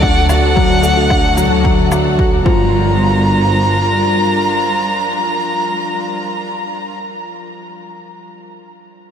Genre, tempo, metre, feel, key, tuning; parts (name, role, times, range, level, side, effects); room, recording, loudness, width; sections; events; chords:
piano and strings electronica; 111 BPM; 4/4; straight; G minor; A4 = 440 Hz
dark violin; melody; 0.0-6.9 s; F#5 to Bb5; -18 LUFS; equal; ping-pong delay
dark chamber string section; sustained chords; 0.0-7.0 s; D3 to Bb4; -21 LUFS; equal; sidechain pumping
soft round pluck; arpeggios; 0.0-3.0 s; F4 to D6; -27 LUFS; left 1 dB
clear upright piano; riff; 0.0-9.1 s; F3 to F#4; -20 LUFS; left 3 dB; ping-pong delay
dark chamber double bass section; bass; 0.0-4.3 s; G1 to D2; -16 LUFS; right 1 dB; tube saturation, sidechain pumping
electronic kick drum; drums; 0.0-2.6 s; -16 LUFS; right 1 dB; overdrive
shaker and woodblock; drums; 0.3-2.0 s; -30 LUFS; left 2 dB; overdrive
wet huge ambient reverb, RT60 7.7 s; dreamy mix soaked in reverb; -12 LUFS; side -8 dB against mid
0.0-2.7 A section; 2.7-7.1 B section
drop 0.0-2.7
0.0 D; 2.5 Gm7